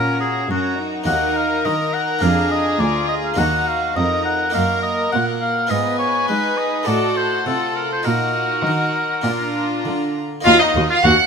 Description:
classical, baroque-style concerto movement with solo episodes; 103 BPM; 4/4; straight; Eb minor; A4 = 440 Hz
rich chamber violin section; melody; 0.0-11.3 s; Eb5 to A#5; -24 LUFS; left 1 dB
warm oboe; melody; 0.0-11.2 s; Eb4 to Gb5; -21 LUFS; left 1 dB
rich chamber violin section; second line; 0.0-11.1 s; Eb4 to Cb5; -25 LUFS; left 2 dB
harpsichord; accompaniment; 0.0-11.3 s; D2 to Ab4; -27 LUFS; right 1 dB
warm chamber viola section; accompaniment; 0.0-11.1 s; Bb3 to F#4; -25 LUFS; right 1 dB
warm chamber cello section; bass; 0.0-11.1 s; D2 to Ab3; -23 LUFS; right 2 dB
rich chamber double bass section; bass; 10.5-11.1 s; Eb2; -23 LUFS; right 3 dB
moderate recital hall reverb, RT60 1.4 s; close, detailed microphones; -16 LUFS; side -6 dB against mid
0.0-10.5 A section
0.0 F#; 1.1 Ebm; 2.2 Bb7/F; 3.4 Ebm; 4.5 Ebm/Gb; 5.7 Fm7b5/Ab; 6.9 Adim7; 8.1 Ebm/Bb; 9.3 Bb; 10.5 Ebm

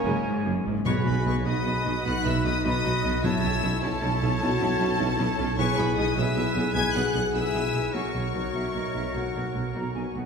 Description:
cinematic, heroic adventure film score; 101 BPM (dotted quarters); 12/8; straight; B major; A4 = 440 Hz
rich studio violin section; melody; 0.0-10.1 s; A#4 to G#6; -32 LUFS; left 4 dB
clear clarinet; second line; 0.0-10.1 s; C#4 to F#4; -35 LUFS; left 3 dB
clear oboe; second line; 0.0-10.2 s; A#4 to C#5; -34 LUFS; right 1 dB
concert flute; second line; 0.0-10.3 s; D#5 to B5; -35 LUFS; left 1 dB
rich symphonic violin section; second line; 0.0-10.1 s; A4 to G#5; -37 LUFS; left 2 dB
rich symphonic viola section; accompaniment; 0.0-10.2 s; C#3 to G#4; -36 LUFS; right 1 dB
mellow French horn section; sustained chords; 0.0-10.1 s; A#3 to A4; -32 LUFS; left 2 dB
rich symphonic cello section; bass; 0.0-10.2 s; F#2 to B2; -32 LUFS; right 2 dB
clear symphonic double bass section; bass; 0.1-10.2 s; F#1 to B1; -32 LUFS; right 2 dB
warm tuba; bass; 0.1-10.2 s; F#1 to B1; -31 LUFS; right 2 dB
timpani; percussion; 0.9-3.8 s; B2; -31 LUFS; equal
wet scoring stage reverb, RT60 1.6 s; heard from further back in the room; -23 LUFS; side -5 dB against mid
0.9-10.3 A section
0.0 F#add9; 0.9 B; 3.2 A/B; 5.6 E/B; 7.9 F#/B

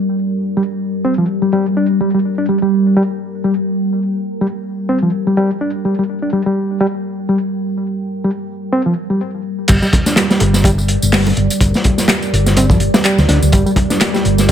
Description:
breakbeat, breaks; 125 BPM; 4/4; swing 56% on 16ths; G minor; A4 = 436 Hz
deep dark ambient pad; sustained chords; 0.0-14.5 s; G3 to G5; -19 LUFS; equal; chorus, built-in reverb, sidechain pumping
bright reed electric piano; riff; 0.6-14.5 s; F3 to D4; -16 LUFS; equal; tube saturation, vintage 12-bit sampler grit, low-pass filter, ping-pong delay
hollow-body short-scale fingered electric bass; bass; 9.7-14.5 s; G1 to D2; -14 LUFS; equal
crunchy breakbeat drum kit; drums; 9.7-14.5 s; crash cymbal, hi-hat, kick drum, snare drum; -15 LUFS; equal
electronic tambourine and handclaps; drums; 9.7-14.5 s; -21 LUFS; equal
bongos and congas; percussion; 9.9-14.5 s; -23 LUFS; right 2 dB
light reverb, studio ambience; -13 LUFS; side -9 dB against mid
0.0-9.7 A section; 9.7-14.5 B section
filter sweep on ambient pad 0.0-9.7; break 9.2-9.7; drop 9.7-14.5
0.0 Gm

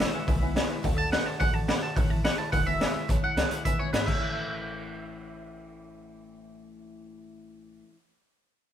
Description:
rockabilly; 213 BPM; 4/4; straight; A major; A4 = 441 Hz
twangy electric guitar; melody; 0.0-7.8 s; B4 to A5; -32 LUFS; right 2 dB; phaser, digital delay
honky-tonk upright piano; accompaniment; 0.0-7.9 s; B4 to B5; -40 LUFS; right 3 dB
picked steel-string acoustic guitar; accompaniment; 0.0-8.0 s; E2 to F#4; -39 LUFS; left 5 dB
raw garage drum kit; drums; 0.0-4.1 s; crash cymbal, hi-hat, kick drum, snare drum; -27 LUFS; equal
upright bass; bass; 0.1-7.8 s; E1 to G#2; -33 LUFS; equal
moderate small room reverb, RT60 0.6 s; band playing live in one room; -25 LUFS; side -10 dB against mid
0.0-3.1 A section; 3.1-4.2 B section; 4.2-6.5 C section
0.0 E; 0.8 D; 2.0 A; 2.5 E; 3.1 A; 3.7 E; 4.1 A

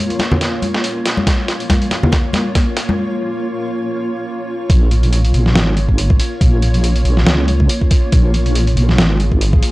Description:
deep dubstep; 140 BPM; 4/4; swing 55% on 16ths, half-time; Bb minor; A4 = 441 Hz
granular cloud pad; sustained chords; 0.0-9.7 s; Bb3 to Db5; -22 LUFS; equal; built-in reverb
trip hop sampler-style drum kit; drums; 0.1-9.7 s; hi-hat, snare drum; -19 LUFS; equal; high-pass filter on hats, high-pass filter on snare
congas; percussion; 0.1-3.0 s; -19 LUFS; left 1 dB; dub echo
electronic kick drum; drums; 1.3-9.6 s; -13 LUFS; equal; overdrive
wobble bass; bass; 4.7-9.6 s; Ab1 to Db2; -14 LUFS; equal; chorus, transformer saturation
digital ambience; dry, gritty hardware recording, cassette tape; -13 LUFS; side -19 dB against mid
0.0-4.7 A section; 4.7-9.7 B section
build-up 0.0-4.7; drum fill 0.0-3.0; break 3.0-4.7; drop 4.7-9.7
0.0 Bbm

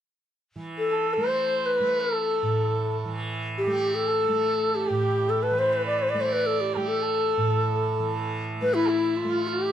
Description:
indian classical, Hindustani; free time; A raga darbari; A4 = 440 Hz
tanpura; drone; 0.6-9.7 s; A2 to A3; -30 LUFS; right 2 dB
breathy hollow bansuri; melody; 0.8-9.7 s; E4 to D5; -24 LUFS; left 2 dB
rich sarangi; second line; 0.9-9.7 s; E4 to D5; -31 LUFS; right 7 dB
moderate studio reverb, RT60 0.6 s; dark, warm production; -22 LUFS; side -10 dB against mid
0.6-9.7 A section

